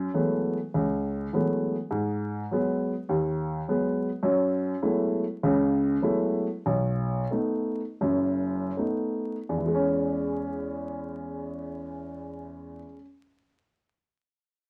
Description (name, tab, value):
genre	solo jazz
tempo	70-104 BPM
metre	4/4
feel	swing 67% on 8ths, rubato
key	E major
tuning	A4 = 442 Hz
part	warm upright piano	solo	0.0-13.0 s	F#1 to E4	-28 LUFS	equal	none
room	moderate studio reverb, RT60 0.5 s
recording	vinyl crackle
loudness	-28 LUFS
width	mono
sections	0.0-9.6 A section; 9.6-13.0 B section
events	slowing down 4.2-9.6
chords	0.0 F#m11; 1.9 G#m7; 4.2 F#m11; 6.6 B7; 9.6 E6